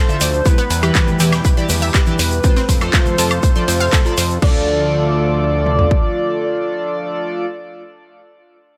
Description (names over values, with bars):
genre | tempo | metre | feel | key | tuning
progressive house | 121 BPM | 4/4 | straight | D dorian | A4 = 439 Hz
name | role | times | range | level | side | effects
expressive portamento lead | melody | 0.0-7.5 s | B4 to D5 | -25 LUFS | equal | analog chorus, cassette tape, sidechain pumping, tape echo
warm analog pad | sustained chords | 0.0-7.5 s | B2 to A4 | -29 LUFS | equal | chorus, sidechain pumping
analog pluck | arpeggios | 0.0-4.7 s | B3 to C6 | -27 LUFS | equal | chorus, sidechain pumping, tape echo
chorused polysynth | stabs | 0.1-7.5 s | D3 to E5 | -24 LUFS | equal | sidechain pumping, tape echo
tube shaker | percussion | 0.1-4.4 s | none | -30 LUFS | equal | none
woodblock and congas | percussion | 0.1-4.2 s | none | -34 LUFS | equal | none
fat analog bass | bass | 0.2-5.9 s | D2 to F2 | -21 LUFS | equal | sidechain pumping
house drum kit | drums | 0.2-4.5 s | crash cymbal, handclaps, hi-hat, woodblock | -24 LUFS | equal | sidechain pumping on hats, sidechain pumping on perc, sidechain pumping on cymbals
warm soul drum kit | drums | 0.2-4.3 s | hi-hat, snare drum | -32 LUFS | equal | none
house drum kit | drums | 0.5-6.0 s | kick drum, toms | -17 LUFS | equal | none
room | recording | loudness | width
light reverb | none | -16 LUFS | mono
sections
0.0-4.4 A section; 4.4-8.4 B section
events
drop 0.0-4.4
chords
0.5 Em; 2.4 F; 4.4 Dm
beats
| 0.46 0.95 1.45 1.94 | 2.44 2.94 3.43 3.93 | 4.42 4.92 5.42 5.91 | 6.41 6.90 7.40